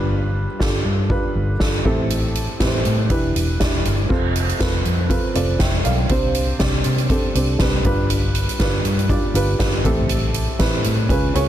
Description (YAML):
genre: piano-driven pop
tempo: 120 BPM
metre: 4/4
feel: swing 56% on 16ths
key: A minor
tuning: A4 = 440 Hz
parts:
  - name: dark upright piano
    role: accompaniment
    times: 0.0-11.5 s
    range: G2 to G5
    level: -22 LUFS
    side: right 2 dB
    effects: none
  - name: vintage muted fingered electric bass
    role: bass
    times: 0.0-11.5 s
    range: E1 to C3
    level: -21 LUFS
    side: equal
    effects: none
  - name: soft-mallet drum kit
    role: drums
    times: 0.6-11.5 s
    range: crash cymbal, hi-hat, kick drum, snare drum, toms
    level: -21 LUFS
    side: equal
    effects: none
room: light reverb, small room ambience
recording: dense, heavily limited modern master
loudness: -17 LUFS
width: side -11 dB against mid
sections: 0.0-4.1 A section; 4.1-11.5 B section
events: none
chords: 0.0 G7; 1.9 Am7; 3.1 Em7; 4.1 F; 6.1 Csus2; 7.8 G7; 9.8 Am7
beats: | 0.10 0.60 1.10 1.60 | 2.10 2.60 3.10 3.60 | 4.10 4.60 5.10 5.60 | 6.10 6.60 7.10 7.60 | 8.10 8.60 9.10 9.60 | 10.10 10.60 11.10